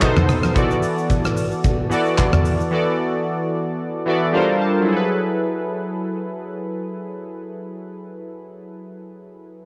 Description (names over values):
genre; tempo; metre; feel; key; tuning
amapiano; 111 BPM; 4/4; swing 55% on 16ths; unclear; A4 = 440 Hz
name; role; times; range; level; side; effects
warm analog keys; accompaniment; 0.0-9.7 s; B2 to A5; -23 LUFS; equal; chorus, cassette tape
gated 80s drum kit; drums; 0.0-2.7 s; handclaps, hi-hat, kick drum, rim click, shaker, toms; -21 LUFS; equal; cassette tape
congas; percussion; 0.0-0.6 s; none; -26 LUFS; equal; none
room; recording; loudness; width
moderate spring reverb, RT60 2.4 s; home recording on cassette; -20 LUFS; mono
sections
0.0-4.9 A section; 4.9-9.2 B section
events
synth keys fill 3.8-4.9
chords
0.0 B7b9; 0.6 E9sus4; 4.3 Gm11; 4.9 F#m11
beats
0.02 | 0.56 1.10 1.64 2.18 | 2.72 3.26 3.80 4.34 | 4.88 5.42 5.96 6.51 | 7.05 7.59 8.13 8.67